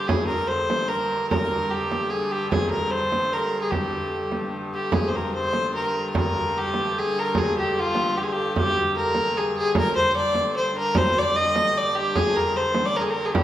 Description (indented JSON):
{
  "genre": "medieval dance",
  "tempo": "149 BPM",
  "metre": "3/4",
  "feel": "straight",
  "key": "G phrygian",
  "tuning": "A4 = 438 Hz",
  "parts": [
    { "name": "warm fiddle", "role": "melody", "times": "0.0-13.4 s", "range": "F4 to Eb5", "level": "-23 LUFS", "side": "equal", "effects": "none" },
    { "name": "rich hurdy-gurdy", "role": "drone", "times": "0.0-13.4 s", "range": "G2 to D3", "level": "-29 LUFS", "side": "equal", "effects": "none" },
    { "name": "frame drum", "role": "percussion", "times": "0.1-13.4 s", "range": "none", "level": "-27 LUFS", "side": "right 2 dB", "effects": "none" }
  ],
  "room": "wet recital hall reverb, RT60 1.5 s",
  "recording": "recorded in a church or concert hall",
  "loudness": "-21 LUFS",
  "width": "side -12 dB against mid",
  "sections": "0.0-4.9 A section; 4.9-13.4 A section",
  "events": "none",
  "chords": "none"
}